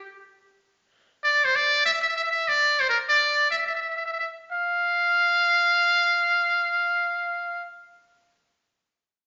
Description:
calypso; 146 BPM; 4/4; swing 54% on 16ths; A4 = 440 Hz
trumpet with metal mute; solo; 1.2-7.7 s; Bb4 to F5; -23 LUFS; equal
wet large studio reverb, RT60 1.2 s; nothing above 7.5 kHz; -23 LUFS; mono
0.0-4.5 A section; 4.5-7.8 B section

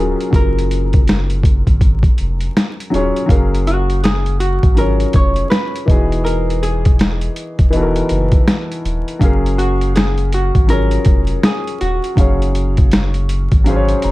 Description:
lo-fi hip hop; 81 BPM; 4/4; swing 61% on 16ths; F# major; A4 = 440 Hz
vintage hollow-body jazz guitar; melody; 0.0-14.1 s; F#4 to C#5; -22 LUFS; equal; analog delay
dark upright piano; accompaniment; 0.0-14.1 s; E3 to A#5; -20 LUFS; left 1 dB; cassette tape
soft dub sub bass; bass; 0.0-14.1 s; D#1 to G#1; -17 LUFS; equal
boom bap sampler-style drum kit; drums; 0.2-14.1 s; hi-hat, kick drum, snare drum; -14 LUFS; equal
light reverb; dark, warm production, vinyl crackle; -12 LUFS; side -18 dB against mid
0.0-3.3 A section; 3.3-14.1 B section
upright piano fill 13.7-14.1
0.0 F#maj9; 5.9 Emaj9; 9.2 F#maj9

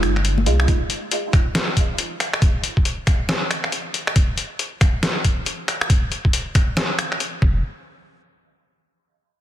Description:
deep dubstep; 138 BPM; 4/4; swing 61% on 16ths, half-time; F minor; A4 = 436 Hz
filtered dub chord stab; stabs; 0.0-0.7 s; Ab3 to F4; -27 LUFS; right 2 dB; phaser, analog chorus, dub echo
soft dub sub bass; bass; 0.0-0.7, 7.4-7.6 s; F1 to C2; -18 LUFS; equal
trip hop sampler-style drum kit; drums; 0.0-7.3 s; finger snaps, hi-hat, snare drum; -22 LUFS; left 1 dB
congas; percussion; 0.4-0.6 s; -30 LUFS; left 5 dB; dub echo
electronic kick drum; drums; 0.7-7.5 s; -17 LUFS; equal
light reverb; dense, heavily limited modern master; -18 LUFS; side -12 dB against mid
0.0-7.6 A section; 7.6-9.4 B section
0.0 Fm7; 0.7 N.C.

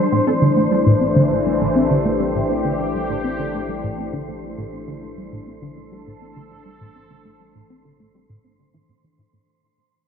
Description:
ambient; 101 BPM; 4/4; straight; A minor; A4 = 440 Hz
sweeping resonant pad; sustained chords; 0.0-9.5 s; E3 to C5; -21 LUFS; left 2 dB; chorus
tight sequenced synth; riff; 0.0-9.4 s; A2 to C4; -20 LUFS; right 1 dB; chorus, tape echo
round analog bass; bass; 0.0-9.4 s; A1; -38 LUFS; equal
wind-like tuned noise texture; texture; 0.0-9.5 s; C5; -28 LUFS; equal; built-in reverb
wet concert hall reverb, RT60 2.3 s; nothing above 7.5 kHz; -16 LUFS; side -7 dB against mid
0.0-9.5 A section
fade-out on analog synth bass 0.0-9.5; fade-out 0.0-9.5; filter sweep on synth arpeggio sound 0.0-9.5
0.0 Am7

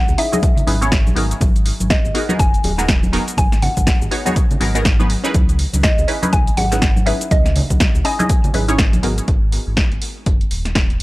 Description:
deep house; 122 BPM; 4/4; swing 59% on 16ths; G# minor; A4 = 440 Hz
mallet-like synth pluck; melody; 0.0-9.0 s; D#5 to G#5; -24 LUFS; left 1 dB; chorus, tape echo
sub bass with octave; bass; 0.1-11.0 s; D#1 to C#2; -20 LUFS; equal; sidechain pumping
punchy analog drum machine; drums; 0.1-11.0 s; cabasa, hi-hat, snare drum; -22 LUFS; equal
bongos and congas; percussion; 0.1-9.0 s; -24 LUFS; equal; sidechain pumping on perc
filtered dub chord stab; stabs; 0.2-9.5 s; B3 to D#5; -22 LUFS; equal; phaser, cassette tape, sidechain pumping, analog delay
electronic kick drum; drums; 0.4-10.9 s; -16 LUFS; equal
digital ambience; dry, gritty hardware recording; -14 LUFS; side -19 dB against mid
0.0-9.3 A section; 9.3-11.0 B section
drop 0.0-9.3
0.0 C#m9; 1.4 G#m7; 5.3 C#m9; 9.3 G#m7

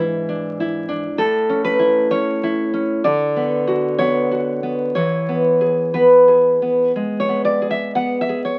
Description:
romantic piece for solo classical guitar; 60-67 BPM; 4/4; rubato; A4 = 440 Hz
nylon-string guitar; solo; 0.0-8.6 s; G#2 to F#5; -18 LUFS; equal
moderate studio reverb, RT60 0.6 s; very old 78 rpm record, vinyl crackle; -18 LUFS; mono
0.0-8.6 A section
0.0 E7/G#; 1.2 A; 3.1 D6; 5.0 E

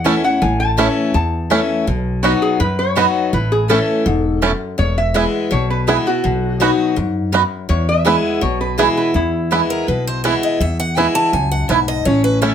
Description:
bluegrass; 165 BPM; 4/4; straight; E major; A4 = 442 Hz
lap resonator guitar; second line; 0.0-12.5 s; C#4 to A5; -20 LUFS; left 1 dB
picked steel-string acoustic guitar; accompaniment; 0.0-12.5 s; E2 to F#4; -19 LUFS; left 3 dB
mandolin; stabs; 0.0-12.5 s; A3 to B5; -20 LUFS; right 10 dB
upright bass; bass; 0.0-12.5 s; E1 to F#2; -20 LUFS; equal
bluegrass banjo; arpeggios; 0.1-12.5 s; A3 to F#4; -18 LUFS; right 5 dB
picked acoustic archtop guitar; melody; 9.7-12.5 s; A4 to A5; -20 LUFS; left 1 dB
moderate studio reverb, RT60 0.5 s; -14 LUFS; side -8 dB against mid
0.0-9.1 A section; 9.1-12.5 B section
resonator guitar played with a steel bar solo 0.0-9.1
0.0 A; 1.9 B; 3.3 A; 4.8 E; 6.2 B; 7.7 E

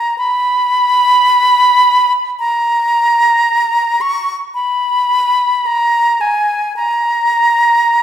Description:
classical, free, expressive piece for unaccompanied flute; 55 BPM; 4/4; rubato; A4 = 441 Hz
silver concert flute; solo; 0.0-8.0 s; Ab5 to Db6; -10 LUFS; equal
wet recital hall reverb, RT60 1.4 s; recorded in a church or concert hall; -10 LUFS; side -10 dB against mid
0.0-8.0 A section

